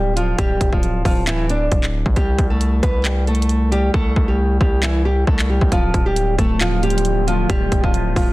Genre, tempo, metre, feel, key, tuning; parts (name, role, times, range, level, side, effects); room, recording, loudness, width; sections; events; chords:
hip hop, trap; 135 BPM; 4/4; half-time; D minor; A4 = 442 Hz
nylon-string guitar; melody; 0.0-8.3 s; E3 to D5; -21 LUFS; equal; low-pass filter, digital delay
distorted 808-style bass; bass; 0.0-8.3 s; D1 to C2; -19 LUFS; equal; distortion
trap drum kit; drums; 0.2-8.3 s; handclaps, hi-hat, kick drum; -19 LUFS; equal; vintage 12-bit sampler grit
warbly tape-like pad; sustained chords; 6.4-8.3 s; D3 to F4; -26 LUFS; equal; chorus, built-in reverb, phaser
digital ambience; dense, heavily limited modern master; -15 LUFS; side -19 dB against mid
0.0-8.3 A section
hi-hats muted 3.9-5.7
0.0 Dm; 2.2 C5; 5.7 Dm